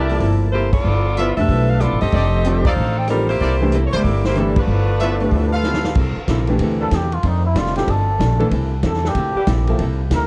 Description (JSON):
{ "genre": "jazz, big band swing", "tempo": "188 BPM", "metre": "4/4", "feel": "swing 64% on 8ths", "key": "C mixolydian", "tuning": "A4 = 441 Hz", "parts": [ { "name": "bright saxophone section", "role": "melody", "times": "0.0-5.6 s", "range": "G3 to G5", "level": "-24 LUFS", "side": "equal", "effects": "analog delay" }, { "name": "archtop guitar, miked and amplified", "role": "accompaniment", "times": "0.0-10.3 s", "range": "F2 to A4", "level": "-29 LUFS", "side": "equal", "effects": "none" }, { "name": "clear trumpet section", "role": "stabs", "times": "0.0-5.9 s", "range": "Eb4 to A5", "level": "-30 LUFS", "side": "equal", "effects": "analog delay" }, { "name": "upright bass", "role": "bass", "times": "0.0-10.3 s", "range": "F1 to F2", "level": "-21 LUFS", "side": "equal", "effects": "none" }, { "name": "clear concert grand piano", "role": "accompaniment", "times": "0.1-9.8 s", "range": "E3 to B4", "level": "-25 LUFS", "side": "equal", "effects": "none" }, { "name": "vintage drum kit", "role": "drums", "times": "0.1-10.2 s", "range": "crash cymbal, hi-hat, kick drum, ride cymbal, rim click, snare drum", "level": "-26 LUFS", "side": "equal", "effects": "none" }, { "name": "trumpet with cup mute", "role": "melody", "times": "6.8-10.3 s", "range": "Eb4 to Bb4", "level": "-26 LUFS", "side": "equal", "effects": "analog delay" }, { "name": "clear saxophone section", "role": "sustained chords", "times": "6.8-9.4 s", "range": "E3 to A4", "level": "-30 LUFS", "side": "equal", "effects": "none" } ], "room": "light reverb, studio reverb", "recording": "cassette tape", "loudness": "-18 LUFS", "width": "mono", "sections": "0.0-6.0 A section; 6.0-10.3 B section", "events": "drum fill 0.5-0.9, 5.6-6.0; band accent 0.7, 2.6, 4.5; muted trumpet solo 6.0-10.3", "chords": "0.0 C13; 0.9 G13; 2.1 F13; 3.4 C13; 4.7 G13; 6.0 C13; 7.2 F13; 8.5 C13" }